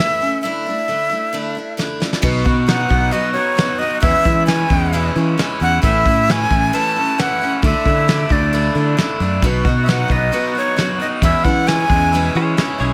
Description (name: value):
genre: folk rock and heartland rock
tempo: 133 BPM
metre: 4/4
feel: straight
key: E major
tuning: A4 = 440 Hz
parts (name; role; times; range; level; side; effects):
- breathy bright jazz flute; melody; 0.0-12.3 s; C#5 to A5; -21 LUFS; equal; slapback echo, plate reverb
- picked steel-string acoustic guitar; accompaniment; 0.0-12.9 s; E2 to F#4; -25 LUFS; equal; none
- soft brush drum kit; drums; 0.2-12.9 s; crash cymbal, hi-hat, kick drum, snare drum; -21 LUFS; equal; none
- raw garage guitar; riff; 2.2-12.9 s; E2 to F#4; -25 LUFS; equal; overdrive
- fingered electric bass; bass; 2.2-12.9 s; A1 to E3; -21 LUFS; equal; none
- pedal steel guitar; second line; 12.4-12.9 s; G#4 to C#5; -25 LUFS; equal; none
room: light reverb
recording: none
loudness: -17 LUFS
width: mono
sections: 0.0-2.2 A section; 2.2-12.9 A section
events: break 0.4-2.2; drum fill 1.8-2.2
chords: 0.4 Dsus2; 2.2 B; 4.0 E6; 5.8 A; 7.6 Dsus2; 9.4 B; 11.2 E6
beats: | 0.43 0.88 1.33 1.78 | 2.23 2.68 3.13 3.58 | 4.03 4.48 4.93 5.38 | 5.83 6.28 6.73 7.18 | 7.63 8.08 8.53 8.97 | 9.43 9.87 10.32 10.77 | 11.22 11.67 12.12 12.57